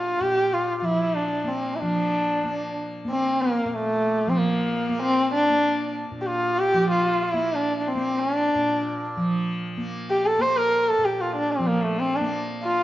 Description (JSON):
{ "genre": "indian classical, Hindustani", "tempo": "94 BPM", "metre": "5/4", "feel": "straight", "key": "Bb raga yaman", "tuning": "A4 = 443 Hz", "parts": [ { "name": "dark sarangi", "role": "melody", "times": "0.0-12.8 s", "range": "A3 to C5", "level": "-22 LUFS", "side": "equal", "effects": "none" }, { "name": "tanpura", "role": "drone", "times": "0.0-12.8 s", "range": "Bb2 to Bb3", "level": "-29 LUFS", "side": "right 1 dB", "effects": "none" } ], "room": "moderate recital hall reverb, RT60 1.5 s", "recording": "nothing above 7.5 kHz", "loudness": "-21 LUFS", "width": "side -14 dB against mid", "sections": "0.0-1.8 A section; 1.8-12.8 B section", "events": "none", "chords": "none", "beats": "0.53 1.17 | 1.81 2.45 3.09 3.73 4.37 | 5.00 5.64 6.28 6.92 7.55 | 8.19 8.83 9.46 10.10 10.73 | 11.37 12.00 12.64" }